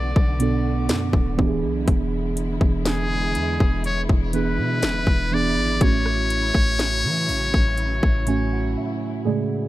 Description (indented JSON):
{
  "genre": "contemporary R&B",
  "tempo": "61 BPM",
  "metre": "4/4",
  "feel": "straight",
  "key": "unclear",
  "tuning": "A4 = 440 Hz",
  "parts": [
    { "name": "trumpet with metal mute", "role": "melody", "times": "0.0-8.8 s", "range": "G#4 to D5", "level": "-25 LUFS", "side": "left 2 dB", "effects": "digital delay" },
    { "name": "muted felt-like synth keys", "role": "accompaniment", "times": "0.0-9.7 s", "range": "A2 to G#5", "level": "-25 LUFS", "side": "right 4 dB", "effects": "chorus" },
    { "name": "dark studio string section", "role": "sustained chords", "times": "0.0-9.7 s", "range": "C#3 to F#4", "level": "-33 LUFS", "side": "left 2 dB", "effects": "none" },
    { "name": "warm 808-style bass", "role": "bass", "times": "0.0-8.8 s", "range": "D1 to E3", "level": "-25 LUFS", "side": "left 1 dB", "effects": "none" },
    { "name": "trap drum kit", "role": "drums", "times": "0.2-8.5 s", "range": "hi-hat, kick drum, rim click, snare drum", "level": "-20 LUFS", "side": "equal", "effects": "none" }
  ],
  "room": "little or no reverb",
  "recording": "none",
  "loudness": "-19 LUFS",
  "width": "side -15 dB against mid",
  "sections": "0.0-9.7 A section",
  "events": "synth keys fill 7.8-9.7; break 8.8-9.7",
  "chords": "0.0 Bm7; 1.4 E7; 5.8 A6",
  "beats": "0.89 | 1.88 2.86 3.85 4.83 | 5.81 6.80 7.78 8.76"
}